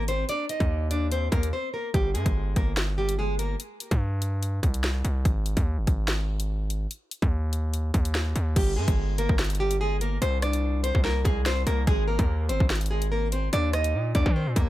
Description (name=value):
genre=hip hop, drill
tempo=145 BPM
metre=4/4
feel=half-time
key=G phrygian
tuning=A4 = 440 Hz
part: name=nylon-string guitar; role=melody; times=0.0-3.6, 8.6-14.7 s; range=G3 to Eb5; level=-29 LUFS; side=equal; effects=tape echo
part: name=distorted 808-style bass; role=bass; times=0.0-14.7 s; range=G1 to Eb3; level=-26 LUFS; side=equal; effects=distortion
part: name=drill drum kit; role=drums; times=0.1-14.7 s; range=crash cymbal, hi-hat, kick drum, rim click, snare drum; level=-26 LUFS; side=equal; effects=none
room=little or no reverb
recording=none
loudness=-23 LUFS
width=side -15 dB against mid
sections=0.0-8.6 A section; 8.6-14.7 B section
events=break 1.5-1.9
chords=0.3 Eb5; 1.9 Gm; 3.6 C5; 5.3 Ab5; 6.9 N.C.; 8.6 Gm; 10.2 Bbadd9/C; 11.9 Ab; 13.5 Eb5